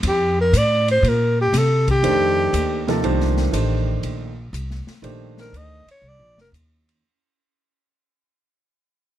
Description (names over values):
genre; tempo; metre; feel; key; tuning
modal jazz; 120 BPM; 4/4; swing 69% on 8ths; unclear; A4 = 441 Hz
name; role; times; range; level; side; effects
upright bass; bass; 0.0-7.0 s; F1 to C3; -21 LUFS; equal; none
open jazz drum kit; drums; 0.0-7.0 s; hi-hat, kick drum, ride cymbal, snare drum; -30 LUFS; left 1 dB; none
breathy alto saxophone; melody; 0.1-6.5 s; G4 to Eb5; -19 LUFS; equal; none
warm concert grand piano; accompaniment; 2.0-5.8 s; C3 to C5; -23 LUFS; right 3 dB; none
room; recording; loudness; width
little or no reverb; close, detailed microphones; -16 LUFS; side -12 dB against mid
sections
0.0-7.0 A section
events
fade-out 0.0-7.0; alto saxophone solo 0.0-7.0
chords
0.0 F9sus4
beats
0.03 0.53 | 1.03 1.53 2.03 2.53 | 3.04 3.54 4.04 4.54 | 5.04 5.54 6.04 6.54